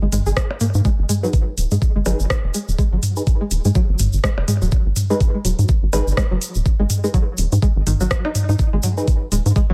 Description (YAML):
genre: minimal techno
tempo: 124 BPM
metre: 4/4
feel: swing 58% on 16ths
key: G# minor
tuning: A4 = 436 Hz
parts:
  - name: string-like resonator pluck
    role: riff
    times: 0.0-9.7 s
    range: D#3 to G#4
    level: -28 LUFS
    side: equal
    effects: chorus, sidechain pumping, analog delay
  - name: rubbery square bass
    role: bass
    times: 0.0-9.7 s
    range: D#1 to G#2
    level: -20 LUFS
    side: equal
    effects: sidechain pumping
  - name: garage drum kit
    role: drums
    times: 0.1-9.5 s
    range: hi-hat, rim click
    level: -29 LUFS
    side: equal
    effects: small room reverb
  - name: egg shaker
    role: percussion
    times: 0.1-9.7 s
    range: none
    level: -33 LUFS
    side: equal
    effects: none
  - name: electronic toms and percussion blips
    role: percussion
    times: 0.1-8.9 s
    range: none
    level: -25 LUFS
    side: equal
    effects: small room reverb, analog delay
  - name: electronic kick drum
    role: drums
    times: 0.4-9.7 s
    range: none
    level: -20 LUFS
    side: equal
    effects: small room reverb
  - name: wavetable chord stab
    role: stabs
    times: 1.2-9.1 s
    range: D#4 to B4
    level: -28 LUFS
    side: equal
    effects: analog delay
room: little or no reverb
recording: none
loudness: -19 LUFS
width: mono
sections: 0.0-9.7 A section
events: filter sweep on synth pluck 0.0-9.7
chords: 0.0 G#m